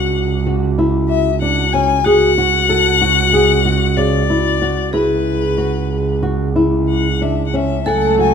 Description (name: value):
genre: contemporary instrumental, chamber music in an uneven meter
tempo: 187 BPM (eighths)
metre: 9/8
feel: straight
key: C# phrygian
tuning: A4 = 438 Hz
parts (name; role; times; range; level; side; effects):
- rich violin; melody; 0.0-8.3 s; B4 to G#5; -18 LUFS; left 10 dB; none
- vibraphone with medium mallets; second line; 0.0-8.3 s; F#4 to A4; -21 LUFS; right 1 dB; none
- flamenco guitar; arpeggios; 0.0-8.3 s; C#3 to G#5; -18 LUFS; left 2 dB; none
- rich double bass; bass; 0.0-8.3 s; C#2; -18 LUFS; right 5 dB; none
- dark studio string section; sustained chords; 7.9-8.3 s; F#3 to A4; -20 LUFS; left 1 dB; none
room: little or no reverb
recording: close, detailed microphones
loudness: -13 LUFS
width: side -7 dB against mid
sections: 0.0-8.3 A section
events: none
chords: 0.0 C#madd11; 2.1 Dmaj7/C#; 4.9 C#m7